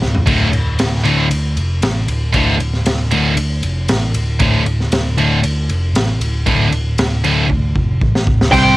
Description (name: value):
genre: hard rock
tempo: 116 BPM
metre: 4/4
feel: straight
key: D minor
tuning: A4 = 438 Hz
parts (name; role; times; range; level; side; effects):
- picked electric bass; bass; 0.0-8.7 s; D1 to D2; -17 LUFS; equal; none
- raw garage drum kit; drums; 0.0-8.7 s; crash cymbal, kick drum, ride cymbal, snare drum, toms; -18 LUFS; equal; cassette tape
- scooped high-gain guitar; riff; 0.3-8.8 s; D2 to C4; -18 LUFS; right 5 dB; distortion, cassette tape
- sludgy distorted guitar; riff; 0.3-8.8 s; D2 to C4; -17 LUFS; left 3 dB; overdrive, cassette tape
- high-gain lead guitar; melody; 8.5-8.8 s; G5; -11 LUFS; right 2 dB; distortion
- octave-fuzz lead guitar; second line; 8.5-8.8 s; C5; -18 LUFS; right 2 dB; distortion, cassette tape
- distorted electric guitar; riff; 8.5-8.8 s; C3 to C4; -18 LUFS; equal; overdrive, cassette tape
room: light reverb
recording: home recording on cassette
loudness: -13 LUFS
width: side -18 dB against mid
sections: 0.0-8.5 A section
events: drum fill 0.0, 7.5-8.5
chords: 0.0 D5